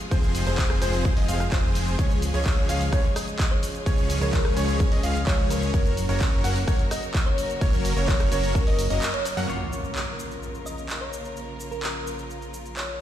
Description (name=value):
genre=EDM, festival progressive house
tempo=128 BPM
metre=4/4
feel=straight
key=Bb minor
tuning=A4 = 441 Hz
part: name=rich studio string section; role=sustained chords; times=0.0-13.0 s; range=C3 to Bb4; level=-35 LUFS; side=right 1 dB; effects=sidechain pumping
part: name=big-room dance drum kit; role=drums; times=0.0-12.9 s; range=cabasa, handclaps, hi-hat, rim click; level=-32 LUFS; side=equal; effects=none
part: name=warm baby grand piano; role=arpeggios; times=0.1-9.5 s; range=C5 to Gb5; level=-34 LUFS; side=right 1 dB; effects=sidechain pumping, dub echo
part: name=supersaw chords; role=riff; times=0.1-9.5 s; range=F3 to Gb5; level=-30 LUFS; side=equal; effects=sidechain pumping, dub echo
part: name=fat analog bass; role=bass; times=0.1-13.0 s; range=F1 to Gb2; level=-28 LUFS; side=equal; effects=tube saturation, sidechain pumping
part: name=electronic kick drum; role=drums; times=0.1-8.6 s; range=none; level=-23 LUFS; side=equal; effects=none
part: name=thumb-piano-like synth pluck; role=melody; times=3.2-12.9 s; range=Bb4 to Eb5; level=-34 LUFS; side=left 1 dB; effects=wide subtle chorus, dub echo
part: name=semi-hollow electric guitar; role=accompaniment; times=9.5-13.0 s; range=Bb3 to Db5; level=-39 LUFS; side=left 2 dB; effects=analog chorus, sidechain pumping, dub echo
part: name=impact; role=sound effects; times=9.5-11.4 s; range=none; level=-37 LUFS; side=equal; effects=none
room=digital ambience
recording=played on a big sound system in a bare room, stone room reverb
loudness=-22 LUFS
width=side -11 dB against mid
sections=0.0-9.5 A section; 9.5-13.0 B section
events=drop 0.0-9.5; break 9.0-9.5; band accent 9.0; impact 9.5-11.4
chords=0.0 Fm; 2.0 Db; 5.7 Gb; 9.5 Bbm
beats=| 0.11 0.58 1.05 1.52 | 1.99 2.46 2.93 3.39 | 3.86 4.33 4.80 5.27 | 5.74 6.21 6.68 7.14 | 7.61 8.08 8.55 9.02 | 9.49 9.96 10.43 10.89 | 11.36 11.83 12.30 12.77